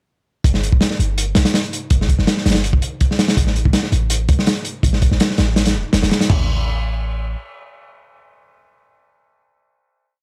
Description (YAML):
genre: drum and bass, jungle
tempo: 164 BPM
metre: 4/4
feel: straight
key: unclear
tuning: A4 = 440 Hz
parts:
  - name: warm 808-style bass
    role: bass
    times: 0.4-7.4 s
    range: E1 to C2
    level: -21 LUFS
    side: equal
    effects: tube saturation
  - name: crunchy breakbeat drum kit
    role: drums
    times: 0.4-6.4 s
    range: crash cymbal, hi-hat, kick drum, snare drum, toms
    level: -19 LUFS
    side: equal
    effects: none
room: little or no reverb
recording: dry, gritty hardware recording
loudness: -17 LUFS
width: mono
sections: 0.4-6.3 drop; 6.3-9.2 final note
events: drop 0.4-6.3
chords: none